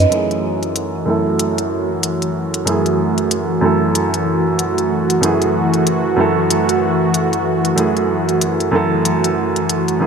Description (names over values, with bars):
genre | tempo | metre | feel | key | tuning
organic downtempo | 94 BPM | 4/4 | swing 59% on 16ths | F# minor | A4 = 440 Hz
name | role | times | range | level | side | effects
felt-muted upright piano | accompaniment | 0.1-10.1 s | F#2 to A4 | -18 LUFS | right 3 dB | low-pass filter, ping-pong delay
warm analog pad | sustained chords | 0.1-10.1 s | E3 to F#4 | -17 LUFS | equal | chorus, tremolo
electronic hi-hat | drums | 0.1-10.0 s | none | -21 LUFS | left 3 dB | overdrive
room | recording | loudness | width
wet scoring stage reverb, RT60 2.2 s | none | -14 LUFS | side -6 dB against mid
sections
0.1-10.1 A section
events
filter sweep on felt piano 0.1-10.1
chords
0.1 F#m7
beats
| 0.12 0.76 1.40 2.03 | 2.67 3.31 3.95 4.59 | 5.22 5.86 6.50 7.14 | 7.78 8.42 9.05 9.69